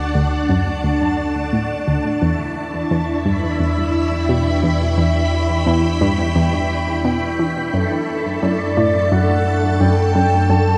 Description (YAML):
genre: ambient, sequencer-driven space music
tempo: 87 BPM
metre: 4/4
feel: straight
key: E dorian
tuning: A4 = 443 Hz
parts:
  - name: string machine, full ensemble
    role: sustained chords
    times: 0.0-10.8 s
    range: D4 to B5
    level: -24 LUFS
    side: equal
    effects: phaser, ensemble chorus, shimmer reverb
  - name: round analog bass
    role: bass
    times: 0.0-10.8 s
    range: D2 to F#2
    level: -24 LUFS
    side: equal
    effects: none
  - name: wind-like tuned noise texture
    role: texture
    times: 0.0-10.8 s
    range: D4 to C#6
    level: -30 LUFS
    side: equal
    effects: built-in reverb, shimmer reverb
  - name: analog pluck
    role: riff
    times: 0.1-10.6 s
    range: D2 to E3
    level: -22 LUFS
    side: equal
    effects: chorus, analog delay
  - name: breathy flute-like synth lead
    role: melody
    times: 8.4-10.8 s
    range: D5 to A5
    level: -22 LUFS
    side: equal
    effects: analog chorus, shimmer reverb, analog delay
room: wet cathedral reverb, RT60 6.0 s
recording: in a vast, echoing space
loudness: -18 LUFS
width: mono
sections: 0.0-10.8 A section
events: none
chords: 0.0 D; 2.2 Em; 7.7 F#m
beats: 0.15 0.84 1.53 | 2.22 2.91 3.60 4.29 | 4.98 5.67 6.36 7.05 | 7.74 8.43 9.12 9.81 | 10.49